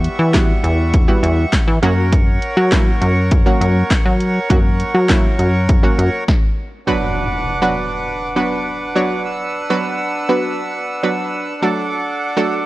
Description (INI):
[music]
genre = dance-pop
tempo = 101 BPM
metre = 4/4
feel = straight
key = B minor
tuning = A4 = 440 Hz
[part]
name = analog pluck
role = accompaniment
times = 0.0-12.7 s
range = F#3 to C#5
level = -20 LUFS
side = right 2 dB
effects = chorus, sidechain pumping
[part]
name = accordion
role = sustained chords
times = 0.0-12.7 s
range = G3 to E6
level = -22 LUFS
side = right 1 dB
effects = sidechain pumping
[part]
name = plucky analog bass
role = bass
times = 0.0-6.1 s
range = E2 to F#3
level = -15 LUFS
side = equal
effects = sidechain pumping
[part]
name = punchy analog drum machine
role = drums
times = 0.0-6.4 s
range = handclaps, hi-hat, kick drum, snare drum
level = -15 LUFS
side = equal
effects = none
[part]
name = impact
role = sound effects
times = 6.9-9.3 s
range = none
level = -27 LUFS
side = equal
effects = none
[sound]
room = light reverb, digital ambience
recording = worn, warbling old tape, cassette tape, warbly pitch drift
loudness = -14 LUFS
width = side -18 dB against mid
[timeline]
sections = 0.0-6.9 A section; 6.9-12.7 B section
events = stop 6.3-6.9; impact 6.9-9.3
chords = 0.0 Emadd9; 1.8 F#; 6.9 Bm; 11.6 D